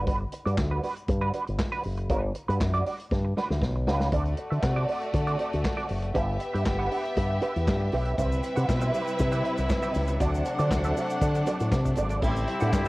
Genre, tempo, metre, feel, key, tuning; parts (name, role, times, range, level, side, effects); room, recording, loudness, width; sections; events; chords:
disco; 118 BPM; 4/4; straight; A4 = 441 Hz
clean electric guitar; accompaniment; 0.0-12.9 s; G3 to F#5; -32 LUFS; right 3 dB; wah, cassette tape
fingered electric bass with an envelope filter; bass; 0.0-12.9 s; F#1 to D3; -26 LUFS; equal
vintage drum kit; drums; 0.1-12.9 s; crash cymbal, handclaps, hi-hat, kick drum, snare drum; -30 LUFS; equal; cassette tape
warm symphonic violin section; second line; 4.1-12.9 s; A3 to F#5; -32 LUFS; left 1 dB; cassette tape
clear studio string section; sustained chords; 8.2-12.9 s; C3 to B4; -32 LUFS; equal; cassette tape
tube shaker; percussion; 8.2-12.9 s; -50 LUFS; left 4 dB
warm horn section; stabs; 12.2-12.9 s; C4 to G4; -30 LUFS; left 1 dB; cassette tape
light reverb, small room ambience; home recording on cassette; -24 LUFS; side -20 dB against mid
0.0-4.1 A section; 4.1-12.2 B section
drum fill 3.1-4.1
0.0 Gmaj7; 4.1 D7; 6.2 G6; 8.2 Cmaj7; 10.2 D7; 12.2 Am7